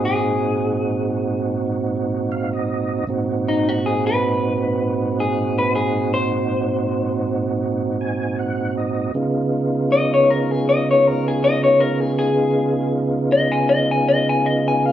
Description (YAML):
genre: blues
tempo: 79 BPM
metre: 4/4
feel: swing 55% on 16ths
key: Ab mixolydian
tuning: A4 = 438 Hz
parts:
  - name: electric guitar through a small old amp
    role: melody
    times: 0.0-14.9 s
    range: Eb4 to Ab5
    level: -19 LUFS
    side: left 3 dB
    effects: spring reverb
  - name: mellow tonewheel organ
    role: accompaniment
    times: 0.0-14.9 s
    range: Ab2 to Ab5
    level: -20 LUFS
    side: right 3 dB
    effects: slow rotary speaker, overdrive, chorus vibrato
room: moderate stone room reverb, RT60 1.0 s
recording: band playing live in one room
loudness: -17 LUFS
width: side -11 dB against mid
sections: 0.0-14.9 A section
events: clean electric guitar solo 0.0-14.9; tonewheel organ fill 1.9-3.1, 7.6-9.2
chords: 0.0 Ab9; 9.2 Db9